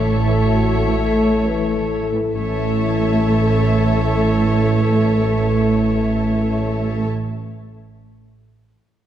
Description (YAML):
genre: cinematic, heroic adventure film score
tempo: 89 BPM (dotted quarters)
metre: 12/8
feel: straight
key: A major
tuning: A4 = 439 Hz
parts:
  - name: warm symphonic violin section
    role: melody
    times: 0.0-7.1 s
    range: E5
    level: -30 LUFS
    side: left 5 dB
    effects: none
  - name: bright large flute ensemble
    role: second line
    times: 0.0-7.1 s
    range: E5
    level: -34 LUFS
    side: left 1 dB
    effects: none
  - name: clear oboe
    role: second line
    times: 0.0-7.1 s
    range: C#5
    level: -31 LUFS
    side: equal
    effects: none
  - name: dark clarinet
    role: second line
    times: 0.0-7.1 s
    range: A4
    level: -31 LUFS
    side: left 2 dB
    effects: none
  - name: warm symphonic violin section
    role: second line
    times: 0.0-7.1 s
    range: A4 to A5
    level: -33 LUFS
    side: left 3 dB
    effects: none
  - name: warm symphonic viola section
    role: accompaniment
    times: 0.0-7.1 s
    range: A4 to C#5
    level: -29 LUFS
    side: equal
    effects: none
  - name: concert harp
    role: arpeggios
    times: 0.0-7.4 s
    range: A2 to A5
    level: -28 LUFS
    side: left 7 dB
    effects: none
  - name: mellow trumpet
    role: stabs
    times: 0.0-7.1 s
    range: A4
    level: -31 LUFS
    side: right 2 dB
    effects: none
  - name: rich symphonic cello section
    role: bass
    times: 0.0-7.1 s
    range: A3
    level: -21 LUFS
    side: right 1 dB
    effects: none
  - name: rich symphonic double bass section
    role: bass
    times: 0.0-7.1 s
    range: A1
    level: -20 LUFS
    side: right 3 dB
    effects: none
  - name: mellow French horn section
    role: sustained chords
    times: 0.2-7.1 s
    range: C#4 to C#5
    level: -26 LUFS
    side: left 4 dB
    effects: none
  - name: clear trombone section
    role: sustained chords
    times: 0.3-7.1 s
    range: A2 to E3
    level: -28 LUFS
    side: right 1 dB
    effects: none
room: wet scoring stage reverb, RT60 2.0 s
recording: dark, warm production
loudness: -15 LUFS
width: side -10 dB against mid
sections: 0.0-2.4 A section; 2.4-7.8 B section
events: slowing down 0.0-2.4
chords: 0.0 A